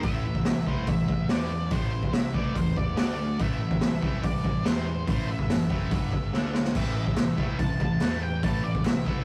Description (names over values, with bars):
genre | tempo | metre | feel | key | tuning
garage rock duo or trio | 143 BPM | 4/4 | straight | A minor | A4 = 441 Hz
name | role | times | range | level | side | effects
octave-fuzz lead guitar | melody | 0.0-9.2 s | C5 to A5 | -39 LUFS | equal | distortion
thick fuzz guitar | riff | 0.0-9.2 s | G2 to D4 | -32 LUFS | equal | distortion
growling picked electric bass | bass | 0.0-9.2 s | F#1 to E2 | -34 LUFS | equal | overdrive
raw garage drum kit | drums | 0.0-9.2 s | crash cymbal, hi-hat, kick drum, snare drum | -30 LUFS | equal | none
group handclap | percussion | 7.2-8.9 s | none | -49 LUFS | equal | none
room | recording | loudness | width
moderate studio ambience, RT60 0.5 s | rough rehearsal-room recording, warm saturation | -27 LUFS | mono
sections
0.0-9.2 A section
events
drum fill 6.3-6.8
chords
0.0 Am; 3.0 D5; 3.4 Am; 5.9 G5; 6.3 D5; 6.8 Am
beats
| 0.04 0.46 0.88 1.30 | 1.72 2.14 2.56 2.98 | 3.40 3.82 4.24 4.66 | 5.08 5.50 5.92 6.34 | 6.76 7.18 7.60 8.02 | 8.44 8.86